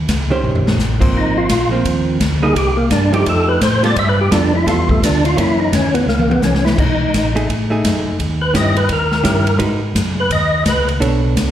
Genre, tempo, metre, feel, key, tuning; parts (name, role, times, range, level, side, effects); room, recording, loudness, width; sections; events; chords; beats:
soul jazz organ trio; 170 BPM; 4/4; swing 63% on 8ths; B mixolydian from 6.8 s; A4 = 440 Hz
mellow tonewheel organ; bass; 0.0-11.5 s; Ab1 to A2; -18 LUFS; equal; chorus vibrato, slow rotary speaker
swinging big-band drum kit; drums; 0.1-11.5 s; crash cymbal, hi-hat, kick drum, ride cymbal, snare drum, toms; -19 LUFS; left 1 dB
hollow-body jazz guitar; accompaniment; 0.3-11.5 s; Eb3 to C#5; -20 LUFS; right 2 dB; slapback echo
percussive tonewheel organ; melody; 1.2-10.9 s; A3 to E5; -17 LUFS; equal; slow rotary speaker, overdrive, chorus vibrato, slapback echo
light reverb, small room reverb; live gig heard through the venue's PA, recital hall reverb; -13 LUFS; side -11 dB against mid
0.0-6.8 A section; 6.8-11.5 A section
tonewheel organ solo 0.0-11.5; drum fill 0.4-0.8, 6.1-6.8
0.0 Eb13; 1.1 Ab69; 2.5 Cm; 3.3 F9; 4.0 G9; 5.4 F#7; 6.8 B6; 8.2 D#7b9; 9.6 G#m7; 11.0 Bm9
0.08 0.43 0.79 | 1.14 1.49 1.84 2.20 | 2.55 2.90 3.25 3.61 | 3.96 4.31 4.66 5.02 | 5.37 5.72 6.07 6.42 | 6.78 7.13 7.48 7.83 | 8.19 8.54 8.89 9.24 | 9.60 9.95 10.30 10.65 | 11.01 11.36